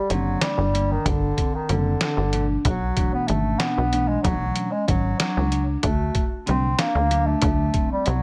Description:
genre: progressive instrumental, band music in an uneven meter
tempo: 188 BPM (eighths)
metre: 5/8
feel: straight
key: unclear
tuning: A4 = 439 Hz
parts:
  - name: warm bass clarinet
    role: melody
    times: 0.0-8.2 s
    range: D3 to C4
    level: -27 LUFS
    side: equal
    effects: none
  - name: bell-like tine electric piano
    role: accompaniment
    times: 0.1-7.9 s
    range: B2 to D4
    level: -32 LUFS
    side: equal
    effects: none
  - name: vibraphone with soft mallets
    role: arpeggios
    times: 0.1-8.2 s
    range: C4 to F#4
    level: -33 LUFS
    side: equal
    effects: none
  - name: plucky analog bass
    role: bass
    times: 0.1-8.2 s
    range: F#1 to D2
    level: -26 LUFS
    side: equal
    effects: none
  - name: lo-fi sampler-style drum kit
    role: drums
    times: 0.1-8.2 s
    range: hi-hat, kick drum, snare drum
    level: -27 LUFS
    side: equal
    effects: none
room: light reverb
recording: none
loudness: -22 LUFS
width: mono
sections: 0.0-8.2 A section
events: none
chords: 0.0 Gm; 2.6 Bm; 5.8 D

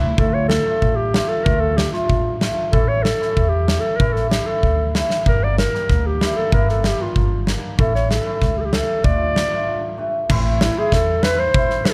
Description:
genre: klezmer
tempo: 95 BPM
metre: 2/4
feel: straight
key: D harmonic minor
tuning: A4 = 445 Hz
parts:
  - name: cimbalom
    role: accompaniment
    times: 0.0-11.8 s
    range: A3 to G4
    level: -26 LUFS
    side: equal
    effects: none
  - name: upright bass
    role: bass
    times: 0.0-11.9 s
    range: G1 to E2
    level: -24 LUFS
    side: equal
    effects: none
  - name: mellow clarinet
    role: melody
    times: 0.2-11.9 s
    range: E4 to D5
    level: -24 LUFS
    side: equal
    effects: none
  - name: huge arena drum kit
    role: drums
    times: 0.2-11.9 s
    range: crash cymbal, kick drum, snare drum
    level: -23 LUFS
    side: equal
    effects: none
room: little or no reverb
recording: none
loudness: -19 LUFS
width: mono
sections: 0.2-10.3 A section; 10.3-11.9 B section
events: break 9.7-10.3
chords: 0.2 Dm; 2.7 A; 5.3 Gm; 7.8 A; 9.0 Dm; 10.3 Am

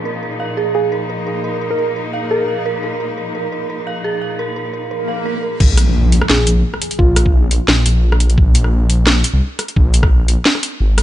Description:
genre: half-time drum and bass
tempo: 173 BPM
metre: 4/4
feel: swing 54% on 16ths, half-time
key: unclear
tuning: A4 = 440 Hz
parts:
  - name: warm studio cello section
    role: sustained chords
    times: 0.0-5.6 s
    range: Bb2 to Eb4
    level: -25 LUFS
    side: left 2 dB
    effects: sidechain pumping, low-pass filter
  - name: dark detuned synth bell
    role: arpeggios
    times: 0.0-5.6 s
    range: Ab4 to F5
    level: -22 LUFS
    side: right 4 dB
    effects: chorus, phaser, vintage 12-bit sampler grit, digital delay
  - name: soft struck synth lead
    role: melody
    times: 0.7-2.6, 6.3-7.5 s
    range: F4 to Bb4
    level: -22 LUFS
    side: equal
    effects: chorus, dub echo
  - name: swell and impact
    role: sound effects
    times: 5.0-7.0 s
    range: none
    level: -23 LUFS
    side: equal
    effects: none
  - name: dark detuned saw bass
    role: bass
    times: 5.6-11.0 s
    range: Ab1 to C2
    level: -13 LUFS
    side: equal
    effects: none
  - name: drum and bass drum kit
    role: drums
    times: 5.6-11.0 s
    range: crash cymbal, hi-hat, rim click, shaker, snare drum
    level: -17 LUFS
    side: equal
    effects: none
  - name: electronic kick drum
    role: drums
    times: 5.6-10.1 s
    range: none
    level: -13 LUFS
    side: equal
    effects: none
room: little or no reverb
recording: nothing above 10.5 kHz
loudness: -13 LUFS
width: side -13 dB against mid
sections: 0.0-5.6 A section; 5.6-11.0 B section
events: filter sweep on synth bell 0.0-5.6; swell 5.0-5.6; drop 5.6-11.0; impact 5.6-7.0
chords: 0.0 Bb5; 5.6 N.C.

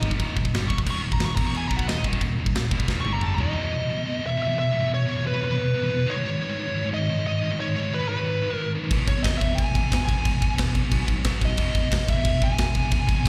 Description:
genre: heavy metal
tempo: 179 BPM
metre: 4/4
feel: straight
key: unclear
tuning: A4 = 441 Hz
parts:
  - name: smooth overdriven lead guitar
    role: melody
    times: 0.0-13.3 s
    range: B4 to Db6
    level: -31 LUFS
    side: equal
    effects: slapback echo, digital delay
  - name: scooped high-gain guitar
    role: riff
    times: 0.0-13.3 s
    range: Eb2 to Cb4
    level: -29 LUFS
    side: equal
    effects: distortion
  - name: picked electric bass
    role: bass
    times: 0.0-3.5, 8.9-13.3 s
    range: Eb1 to Cb2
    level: -31 LUFS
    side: equal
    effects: none
  - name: tight metal drum kit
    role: drums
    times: 0.0-3.5, 8.9-13.3 s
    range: china cymbal, crash cymbal, kick drum, snare drum, toms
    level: -27 LUFS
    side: equal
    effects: none
room: small room ambience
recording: live gig heard through the venue's PA, recital hall reverb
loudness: -24 LUFS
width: mono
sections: 0.0-3.6 A section; 3.6-13.3 B section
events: lead electric guitar solo 0.0-3.6; drum fill 2.9-3.6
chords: 0.0 Eb; 1.4 E5; 1.7 Eb5; 3.1 G5; 3.4 Eb5; 3.6 E5; 6.1 Abm; 8.9 E; 10.9 B5; 11.6 E

